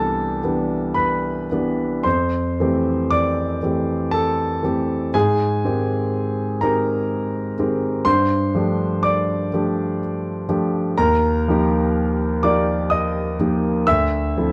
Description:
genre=classical, impressionist solo piano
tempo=54-63 BPM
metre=3/4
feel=rubato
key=unclear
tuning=A4 = 440 Hz
part: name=warm concert grand piano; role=solo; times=0.0-14.5 s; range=C2 to E6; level=-20 LUFS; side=equal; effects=none
room=moderate stone room reverb, RT60 1.2 s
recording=dark, warm production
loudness=-20 LUFS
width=mono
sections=0.0-14.5 A section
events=none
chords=0.0 Cmaj9; 2.1 Fmaj9; 5.1 Abmaj7; 8.1 G11; 11.0 Ebadd9; 13.9 Dm9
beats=0.95 | 2.05 3.10 4.13 | 5.14 6.13 7.09 | 8.05 9.02 10.00 | 10.97 11.94 12.89 | 13.85

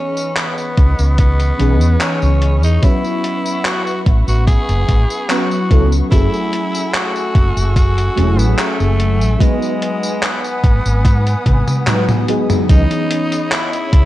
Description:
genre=vaporwave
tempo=73 BPM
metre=4/4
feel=straight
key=C# minor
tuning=A4 = 440 Hz
part: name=raspy tenor saxophone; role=melody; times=0.0-14.1 s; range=G#3 to G#4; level=-22 LUFS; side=equal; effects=tape echo
part: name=FM electric piano with soft pad layer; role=accompaniment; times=0.0-14.1 s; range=E3 to D#5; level=-20 LUFS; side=equal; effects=phaser, ensemble chorus, tape echo
part: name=muted studio string section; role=sustained chords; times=0.0-14.1 s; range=A3 to E6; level=-29 LUFS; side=left 2 dB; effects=vintage 12-bit sampler grit
part: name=gated 80s digital drum machine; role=drums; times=0.2-14.1 s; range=handclaps, hi-hat, tambourine, toms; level=-20 LUFS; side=equal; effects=gated reverb
part: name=woody fretless electric bass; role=bass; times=0.8-14.1 s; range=E1 to G#2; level=-14 LUFS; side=equal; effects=analog chorus
part: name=electronic kick drum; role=drums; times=0.8-14.1 s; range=none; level=-12 LUFS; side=equal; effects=none
room=little or no reverb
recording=cassette tape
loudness=-12 LUFS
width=side -15 dB against mid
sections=0.0-12.7 A section; 12.7-14.1 B section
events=drum fill 11.5-12.7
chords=0.0 C#m9; 2.8 A69; 6.1 F#m9; 9.4 G#m7; 12.7 C#m9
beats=0.37 1.19 2.01 | 2.83 3.65 4.47 5.30 | 6.12 6.94 7.76 8.59 | 9.41 10.23 11.05 11.87 | 12.69 13.52

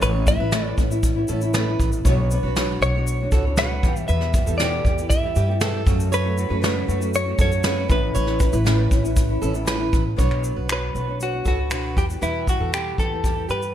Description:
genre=acoustic pop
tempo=118 BPM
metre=4/4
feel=straight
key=B minor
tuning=A4 = 440 Hz
part: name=direct-recorded clean electric guitar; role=melody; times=0.0-13.7 s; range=E4 to F#5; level=-26 LUFS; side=left 1 dB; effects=wide subtle chorus
part: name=nylon-string guitar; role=accompaniment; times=0.0-13.7 s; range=E2 to C#5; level=-26 LUFS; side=equal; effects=double-tracked left and right
part: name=fingerpicked plugged-in steel-string acoustic guitar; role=arpeggios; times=0.0-13.6 s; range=G4 to C#5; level=-32 LUFS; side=right 8 dB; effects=ping-pong delay
part: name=upright bass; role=bass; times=0.0-13.7 s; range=A1 to G2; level=-24 LUFS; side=equal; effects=none
part: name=soft brush drum kit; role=drums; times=0.0-13.7 s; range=finger snaps, kick drum, shaker, snare drum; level=-22 LUFS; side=equal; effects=gated reverb
room=light reverb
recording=bright 1980s-style digital production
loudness=-19 LUFS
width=side -10 dB against mid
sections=0.0-10.2 A section; 10.2-13.7 B section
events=none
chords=0.0 Aadd9; 2.0 Bmadd9; 3.8 Em; 5.9 F#m; 7.9 Aadd9; 10.2 Bmadd9; 12.0 Em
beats=| 0.02 0.52 1.03 1.54 | 2.05 2.56 3.07 3.58 | 4.08 4.59 5.10 5.61 | 6.12 6.63 7.13 7.64 | 8.15 8.66 9.17 9.68 | 10.18 10.69 11.20 11.71 | 12.22 12.73 13.24

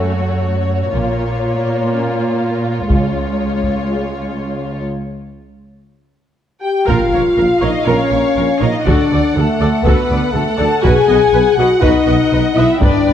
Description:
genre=cinematic, epic orchestral film score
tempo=122 BPM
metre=4/4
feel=straight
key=unclear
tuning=A4 = 440 Hz
part: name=warm symphonic violin section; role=melody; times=0.0-13.1 s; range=C#5 to G5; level=-24 LUFS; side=left 5 dB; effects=none
part: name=warm symphonic violin section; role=second line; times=0.0-13.1 s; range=E#4 to A5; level=-23 LUFS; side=left 1 dB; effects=none
part: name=warm symphonic viola section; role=accompaniment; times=0.0-13.1 s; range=G#3 to D#5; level=-22 LUFS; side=right 1 dB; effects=none
part: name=dark French horn section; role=sustained chords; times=0.0-13.1 s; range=G#3 to A4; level=-15 LUFS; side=left 4 dB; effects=none
part: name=dark symphonic cello section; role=bass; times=0.0-13.1 s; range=C#2 to D3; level=-21 LUFS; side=right 2 dB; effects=none
part: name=warm symphonic double bass section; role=bass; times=0.9-3.3, 6.9-13.1 s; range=G1 to D2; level=-21 LUFS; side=right 4 dB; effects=none
part: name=taiko ensemble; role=drums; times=2.9-3.9, 6.9-13.1 s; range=none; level=-18 LUFS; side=equal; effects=none
part: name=mellow tuba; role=bass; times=6.9-13.1 s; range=G1 to D2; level=-22 LUFS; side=right 4 dB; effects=none
part: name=impact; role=sound effects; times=6.9-8.9 s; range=none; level=-27 LUFS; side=equal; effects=none
room=moderate scoring stage reverb, RT60 1.8 s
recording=dark, warm production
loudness=-12 LUFS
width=side -9 dB against mid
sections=0.0-6.9 A section; 6.9-13.1 B section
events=build-up 0.0-6.9; break 4.9-6.9; impact 6.9-8.9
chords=0.0 F#m; 0.9 A#m; 2.9 C#; 4.9 N.C.; 6.9 A#m; 8.9 D; 10.8 B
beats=0.44 | 0.93 1.42 1.91 2.40 | 2.90 3.39 3.88 4.37 | 4.87 5.37 5.87 6.38 | 6.88 7.38 7.87 8.37 | 8.86 9.36 9.85 10.34 | 10.84 11.33 11.82 12.32 | 12.81

